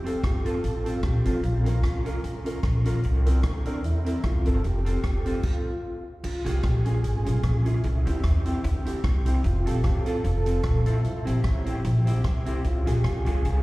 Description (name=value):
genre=ska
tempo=150 BPM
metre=4/4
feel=swing 56% on 8ths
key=F major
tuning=A4 = 439 Hz
part: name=mellow tonewheel organ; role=melody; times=0.0-13.6 s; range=D4 to A4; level=-34 LUFS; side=right 1 dB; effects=overdrive, fast rotary speaker, analog delay
part: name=mellow electric guitar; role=accompaniment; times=0.0-13.4 s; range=C4 to Bb4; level=-33 LUFS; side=right 1 dB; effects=analog delay, slapback echo
part: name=upright bass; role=bass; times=0.0-13.6 s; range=F1 to E2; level=-24 LUFS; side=equal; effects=none
part: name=dark upright piano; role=stabs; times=0.1-13.4 s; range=C4 to Bb4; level=-36 LUFS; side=equal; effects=analog delay, slapback echo
part: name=swinging big-band drum kit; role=drums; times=0.1-13.6 s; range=crash cymbal, hi-hat, kick drum, rim click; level=-29 LUFS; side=equal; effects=none
room=little or no reverb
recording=live gig heard through the venue's PA, recital hall reverb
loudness=-22 LUFS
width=side -20 dB against mid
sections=0.0-6.2 A section; 6.2-13.6 B section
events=stop 5.4-6.2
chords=0.0 F; 1.4 Bbm; 3.0 C7; 4.6 F; 6.2 Db; 7.8 C; 9.4 F; 11.0 C; 12.6 Db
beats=0.23 0.63 1.03 | 1.43 1.83 2.23 2.63 | 3.03 3.44 3.83 4.24 | 4.64 5.04 5.44 5.84 | 6.24 6.64 7.04 7.44 | 7.84 8.24 8.64 9.04 | 9.44 9.84 10.24 10.64 | 11.04 11.44 11.84 12.24 | 12.64 13.04 13.44